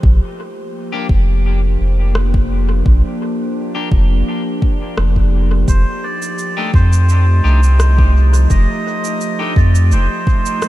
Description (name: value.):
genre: ambient dub.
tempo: 85 BPM.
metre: 4/4.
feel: swing 53% on 16ths.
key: F mixolydian.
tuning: A4 = 441 Hz.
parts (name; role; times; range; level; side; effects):
warbly tape-like pad; sustained chords; 0.0-10.7 s; F3 to C5; -23 LUFS; equal; chorus, built-in reverb.
soft dub sub bass; bass; 0.0-10.1 s; F1 to F2; -12 LUFS; equal; none.
electronic kick drum; drums; 0.0-10.4 s; none; -14 LUFS; equal; overdrive, studio reverb.
clean electric guitar; stabs; 0.9-9.5 s; A3 to G4; -28 LUFS; left 4 dB; wide subtle chorus, dub echo.
electronic rim click and cabasa; drums; 2.2-10.7 s; none; -29 LUFS; equal; studio reverb, dub echo.
melodica; melody; 5.7-10.7 s; C5 to Eb5; -22 LUFS; right 1 dB; dub echo.
room: little or no reverb.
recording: none.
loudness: -12 LUFS.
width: side -16 dB against mid.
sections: 0.0-10.7 A section.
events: fade-in on ambient pad 0.0-10.7.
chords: 0.0 Bb6; 5.7 F13.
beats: | 0.03 0.74 1.45 2.15 | 2.86 3.56 4.27 4.97 | 5.68 6.39 7.09 7.80 | 8.51 9.21 9.92 10.62.